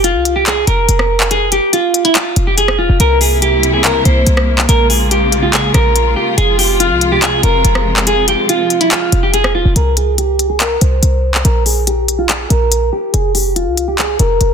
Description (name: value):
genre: hip hop, trap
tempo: 142 BPM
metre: 4/4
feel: half-time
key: F harmonic minor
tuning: A4 = 440 Hz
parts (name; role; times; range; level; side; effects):
- semi-hollow electric guitar; melody; 0.0-14.5 s; E4 to C5; -14 LUFS; right 1 dB; wide subtle chorus, low-pass filter, digital delay
- short 808-style bass; bass; 0.0-14.5 s; E1 to C2; -15 LUFS; equal; none
- trap drum kit; drums; 0.0-14.5 s; handclaps, hi-hat, rim click; -16 LUFS; left 2 dB; none
- warm symphonic string section; sustained chords; 3.0-9.7 s; C3 to F4; -19 LUFS; left 1 dB; none
room: light reverb, digital ambience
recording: dense, heavily limited modern master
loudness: -10 LUFS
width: side -7 dB against mid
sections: 0.0-9.8 A section; 9.8-14.5 B section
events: filter sweep on clean electric guitar 9.8-14.5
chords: 0.0 F5; 3.0 C7; 4.7 Bbm7; 6.4 Fm; 9.8 Abadd9/C (rootless); 11.4 Gm/Bb; 13.1 F5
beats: 0.04 0.46 0.89 | 1.31 1.73 2.15 2.58 | 3.00 3.42 3.84 4.27 | 4.69 5.11 5.53 5.96 | 6.38 6.80 7.22 7.65 | 8.07 8.49 8.91 9.34 | 9.76 10.18 10.60 11.03 | 11.45 11.87 12.29 12.72 | 13.14 13.56 13.98 14.41